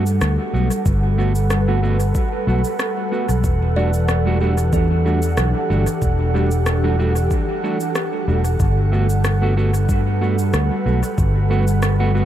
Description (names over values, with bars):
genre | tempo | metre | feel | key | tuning
ambient dub | 93 BPM | 4/4 | swing 54% on 16ths | unclear | A4 = 440 Hz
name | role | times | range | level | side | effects
airy breathy pad | sustained chords | 0.0-12.2 s | E3 to F#5 | -22 LUFS | right 1 dB | chorus
mellow electric guitar | stabs | 0.0-12.2 s | G3 to F#4 | -25 LUFS | right 2 dB | dub echo
fingered electric bass | bass | 0.0-12.2 s | E1 to G2 | -18 LUFS | equal | tube saturation
electronic cabasa and rim click | drums | 0.1-12.0 s | none | -29 LUFS | left 1 dB | overdrive, dub echo
electronic kick drum | drums | 0.9-11.3 s | none | -21 LUFS | equal | overdrive
kalimba | arpeggios | 3.8-7.6 s | G4 to D5 | -32 LUFS | right 1 dB | none
room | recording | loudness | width
light reverb, digital ambience | vinyl crackle | -16 LUFS | side -11 dB against mid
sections
0.0-12.2 A section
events
none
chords
0.0 Gmaj9; 3.4 Em11; 8.6 Gmaj9